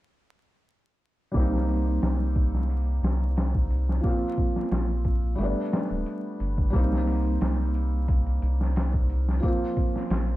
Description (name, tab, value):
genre	trip hop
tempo	89 BPM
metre	4/4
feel	straight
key	C minor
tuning	A4 = 439 Hz
part	felt-muted upright piano	accompaniment	1.3-10.4 s	F3 to F4	-29 LUFS	right 1 dB	harmonic tremolo, vintage 12-bit sampler grit, low-pass filter, tape echo
part	round analog bass	bass	1.3-10.4 s	D1 to C2	-25 LUFS	equal	none
part	trip hop sampler-style drum kit	drums	1.3-10.3 s	hi-hat, kick drum, snare drum	-27 LUFS	equal	low-pass filter on kick, low-pass filter on hats, low-pass filter on snare, low-pass filter on room
room	little or no reverb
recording	dark, warm production, vinyl crackle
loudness	-23 LUFS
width	side -16 dB against mid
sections	1.3-10.4 A section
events	filter sweep on felt piano 1.3-10.4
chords	1.3 Cm7; 4.0 Bbsus2; 5.4 Gadd9; 6.7 Cm7; 9.4 Bbsus2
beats	| 1.34 2.02 2.69 3.37 | 4.04 4.72 5.39 6.06 | 6.74 7.41 8.09 8.76 | 9.44 10.11